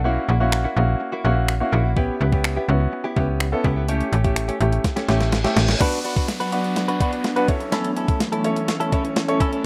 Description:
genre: dance-pop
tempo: 125 BPM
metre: 4/4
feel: straight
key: unclear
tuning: A4 = 440 Hz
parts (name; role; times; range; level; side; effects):
- clear baby grand piano; accompaniment; 0.0-9.6 s; A3 to C#5; -27 LUFS; equal; sidechain pumping, plate reverb
- direct-recorded clean electric guitar; riff; 0.0-9.7 s; A3 to B4; -29 LUFS; equal; subtle chorus
- slap-like FM bass; bass; 0.0-5.8 s; A1 to C#2; -22 LUFS; equal; sidechain pumping
- crisp 8-bit digital drum machine; drums; 0.5-9.6 s; crash cymbal, finger snaps, hi-hat, kick drum, snare drum; -25 LUFS; equal; none
- reverse cymbal, riser and downlifter; sound effects; 5.1-9.7 s; none; -34 LUFS; equal; none
- glassy FM pad; sustained chords; 6.4-9.7 s; E3 to D4; -28 LUFS; equal; ensemble chorus, built-in reverb, sidechain pumping, plate reverb
room: moderate studio reverb, RT60 0.6 s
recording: rough home demo mix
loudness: -21 LUFS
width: mono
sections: 0.0-5.8 A section; 5.8-9.7 B section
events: drum fill 4.8-5.8, 5.8-9.7; reverse cymbal 5.1-5.8; build-up 5.8-9.7; riser 5.8-9.7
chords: 0.0 F#7/A#; 2.0 C#m7b5; 3.9 A7; 5.8 Bm; 7.5 A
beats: | 0.05 0.53 1.01 1.49 | 1.97 2.45 2.93 3.41 | 3.89 4.37 4.85 5.33 | 5.81 6.29 6.77 7.25 | 7.73 8.21 8.69 9.17 | 9.65

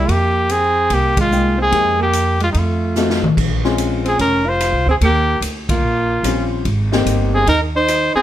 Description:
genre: jazz, small-group swing and bop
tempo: 146 BPM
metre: 4/4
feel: swing 65% on 8ths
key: F minor, Bb minor from 3.4 s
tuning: A4 = 438 Hz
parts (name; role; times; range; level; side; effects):
- clear trumpet; melody; 0.0-8.2 s; Eb4 to C5; -17 LUFS; equal; plate reverb
- clear alto saxophone; second line; 0.0-8.2 s; G3 to F4; -21 LUFS; right 4 dB; none
- clear grand piano; accompaniment; 0.0-7.5 s; G3 to G5; -20 LUFS; left 4 dB; none
- upright bass; bass; 0.0-8.2 s; F1 to F2; -19 LUFS; equal; none
- swinging big-band drum kit; drums; 0.1-8.0 s; crash cymbal, hi-hat, kick drum, ride cymbal, rim click, snare drum, toms; -24 LUFS; left 1 dB; none
room: moderate studio reverb, RT60 0.6 s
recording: none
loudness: -14 LUFS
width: side -12 dB against mid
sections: 0.0-3.4 A section; 3.4-8.2 B section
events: band accent 1.1, 5.6; drum fill 3.0-3.4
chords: 0.1 Fm11; 2.5 F7b9; 3.4 Bbm9; 5.0 Eb13; 6.7 Abmaj9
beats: | 0.09 0.49 0.91 1.32 | 1.73 2.14 2.55 2.96 | 3.37 3.78 4.19 4.60 | 5.01 5.42 5.83 6.24 | 6.65 7.06 7.47 7.88

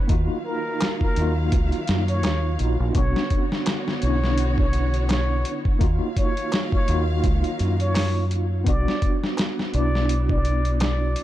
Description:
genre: trip hop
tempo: 84 BPM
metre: 4/4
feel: swing 56% on 16ths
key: unclear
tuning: A4 = 440 Hz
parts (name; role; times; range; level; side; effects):
- tine electric piano; accompaniment; 0.0-11.2 s; A#3 to F#4; -28 LUFS; equal; overdrive, fast stereo tremolo, tape echo
- rich studio string section; sustained chords; 0.0-11.2 s; D3 to E#5; -33 LUFS; equal; none
- deep dub fingered electric bass; bass; 0.1-11.1 s; A#1 to F#2; -22 LUFS; equal; none
- dusty soul sampler-style drum kit; drums; 0.1-11.2 s; hi-hat, kick drum, snare drum; -24 LUFS; equal; overdrive, vintage 12-bit sampler grit
- trumpet with plunger mute; melody; 0.5-11.2 s; A#4 to D5; -30 LUFS; equal; tape echo
- darbuka; percussion; 0.8-11.0 s; none; -37 LUFS; right 4 dB; none
room: little or no reverb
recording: dark, warm production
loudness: -20 LUFS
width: side -13 dB against mid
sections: 0.0-11.2 A section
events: none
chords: 0.1 D#madd9; 3.0 Bmadd9; 5.8 D#madd9; 8.7 Bm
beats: | 0.09 0.81 1.52 2.24 | 2.95 3.67 4.38 5.09 | 5.81 6.52 7.24 7.95 | 8.67 9.38 10.09 10.81

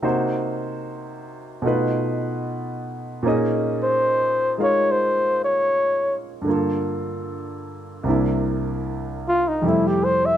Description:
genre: jazz ballad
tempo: 75 BPM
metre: 4/4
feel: swing 67% on 8ths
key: unclear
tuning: A4 = 440 Hz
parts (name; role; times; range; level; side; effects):
- warm concert grand piano; accompaniment; 0.0-10.4 s; C2 to F5; -23 LUFS; equal; none
- warm flugelhorn; melody; 3.8-10.4 s; Eb4 to E5; -19 LUFS; left 1 dB; none
room: light reverb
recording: close, detailed microphones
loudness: -20 LUFS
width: side -10 dB against mid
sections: 0.0-10.4 A section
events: flugelhorn solo 0.0-10.4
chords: 0.0 Cm7b5; 1.6 B7#11; 3.3 Bbm11; 6.5 Gm7; 8.1 C7; 9.6 Fmaj7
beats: | 0.04 0.83 1.64 2.44 | 3.25 4.06 4.87 5.67 | 6.46 7.26 8.05 8.85 | 9.64

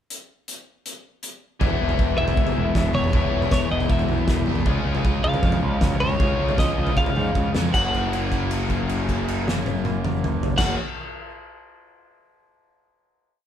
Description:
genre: indie rock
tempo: 157 BPM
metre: 4/4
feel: straight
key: F# major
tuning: A4 = 441 Hz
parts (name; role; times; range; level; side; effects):
- loose indie drum kit; drums; 0.1-10.7 s; crash cymbal, hi-hat, kick drum, snare drum, toms; -24 LUFS; right 1 dB; none
- biting overdriven guitar; riff; 1.6-10.8 s; F#2 to F#4; -27 LUFS; left 6 dB; none
- distorted electric guitar; riff; 1.6-10.8 s; E3 to G#4; -32 LUFS; right 6 dB; distortion
- fuzz picked electric bass; bass; 1.6-10.7 s; E1 to G#2; -26 LUFS; equal; overdrive
- twelve-string electric guitar; melody; 2.2-10.7 s; C#5 to F#5; -26 LUFS; equal; none
room: light reverb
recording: band playing live in one room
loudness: -19 LUFS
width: side -10 dB against mid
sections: 0.1-1.6 pickup bar; 1.6-7.7 pre-chorus; 7.7-10.8 final chord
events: drum fill 7.4-7.7; held note 7.7-10.6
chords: 0.1 N.C.; 1.6 E6; 4.7 C#; 7.7 F#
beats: | 0.09 0.47 0.85 1.23 | 1.61 1.99 2.38 2.75 | 3.14 3.52 3.90 4.28 | 4.67 5.05 5.43 5.82 | 6.20 6.59 6.97 7.36 | 7.74 8.13 8.51 8.90 | 9.28 9.66 10.05 10.43

